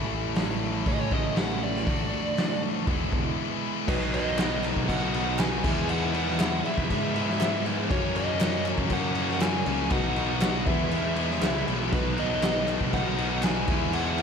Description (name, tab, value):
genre	classic rock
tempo	119 BPM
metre	4/4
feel	straight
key	B major from 3.9 s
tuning	A4 = 440 Hz
part	distorted electric guitar	riff	0.0-14.2 s	F#2 to F#4	-34 LUFS	right 10 dB	distortion
part	tight distorted guitar	riff	0.0-14.2 s	F#2 to F#4	-31 LUFS	left 11 dB	distortion
part	fuzz picked electric bass	bass	0.0-14.2 s	E1 to G#2	-32 LUFS	equal	overdrive
part	raw garage drum kit	drums	0.4-14.2 s	crash cymbal, hi-hat, kick drum, snare drum	-28 LUFS	equal	none
part	dark smooth lead guitar	melody	0.9-14.2 s	B4 to G#5	-32 LUFS	right 2 dB	overdrive, slapback echo
part	reed electric piano	accompaniment	3.9-14.2 s	F#4 to E5	-37 LUFS	left 7 dB	fast tremolo, slapback echo
part	thick fuzz guitar	riff	3.9-14.2 s	F#2 to E4	-34 LUFS	right 1 dB	distortion
part	group handclap	percussion	4.4-13.5 s	none	-43 LUFS	right 8 dB	none
room	moderate lush hall reverb, RT60 1.6 s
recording	big arena sound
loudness	-24 LUFS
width	side -6 dB against mid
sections	0.0-3.9 A section; 3.9-14.2 B section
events	lead electric guitar solo 0.0-3.9; break 3.4-3.9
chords	0.0 A; 1.9 D/A; 2.9 E; 3.9 B; 5.6 E; 7.9 F#; 9.9 B; 10.7 E; 11.9 B; 13.7 E